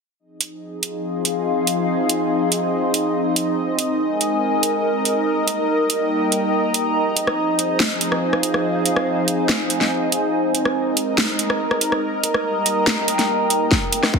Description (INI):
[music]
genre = heavy wobble dubstep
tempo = 142 BPM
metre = 4/4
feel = half-time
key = F minor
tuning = A4 = 440 Hz
[part]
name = lush unison pad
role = sustained chords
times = 0.7-14.2 s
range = F3 to Eb5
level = -22 LUFS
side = equal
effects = chorus, sidechain pumping
[part]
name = warbly tape-like pad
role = texture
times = 0.6-14.2 s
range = Eb4 to C6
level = -23 LUFS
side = equal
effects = chorus, built-in reverb, sidechain pumping
[part]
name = dubstep drum kit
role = drums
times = 0.4-14.1 s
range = hi-hat, rim click, snare drum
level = -20 LUFS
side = right 1 dB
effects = soft clipping on snare
[part]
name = electronic kick drum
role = drums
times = 13.7-14.2 s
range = none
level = -20 LUFS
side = left 1 dB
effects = none
[part]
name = riser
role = sound effects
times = 13.8-14.2 s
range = none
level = -31 LUFS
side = right 1 dB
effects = none
[sound]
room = moderate lush hall reverb, RT60 1.9 s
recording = dense, heavily limited modern master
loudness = -18 LUFS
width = side -5 dB against mid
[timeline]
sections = 0.2-13.7 A section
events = drum fill 13.7-14.2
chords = 0.2 Fm7; 3.6 Abadd9; 5.3 Eb; 7.0 Fm7; 10.3 Abadd9; 12.0 Eb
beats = | 0.19 0.62 1.04 1.46 | 1.88 2.31 2.73 3.15 | 3.57 4.00 4.42 4.84 | 5.26 5.69 6.11 6.53 | 6.95 7.38 7.80 8.22 | 8.64 9.07 9.49 9.91 | 10.34 10.76 11.18 11.60 | 12.03 12.45 12.87 13.29 | 13.71 14.14